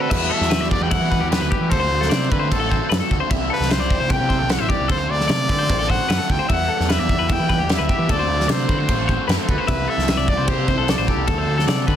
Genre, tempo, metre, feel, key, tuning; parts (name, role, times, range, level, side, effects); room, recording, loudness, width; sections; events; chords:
math rock and midwest emo; 150 BPM; 4/4; straight; E minor; A4 = 440 Hz
clear trumpet; melody; 0.0-12.0 s; A4 to G5; -24 LUFS; left 1 dB
clean electric guitar; accompaniment; 0.0-1.7 s; F#4; -31 LUFS; right 10 dB
twelve-string electric guitar; arpeggios; 0.0-12.0 s; E4 to E5; -25 LUFS; left 9 dB; plate reverb
crunchy overdriven guitar; riff; 0.0-12.0 s; C3 to F#4; -27 LUFS; right 3 dB; phaser
growling picked electric bass; bass; 0.1-12.0 s; A1 to E3; -23 LUFS; equal; overdrive
loose indie drum kit; drums; 0.1-12.0 s; crash cymbal, kick drum, snare drum; -21 LUFS; equal
light reverb; dense, heavily limited modern master; -17 LUFS; side -10 dB against mid
0.1-12.0 A section
0.1 Em9; 1.7 D7; 3.3 C69; 4.9 D7; 6.5 Em9; 8.1 D7; 9.7 C69; 11.3 D7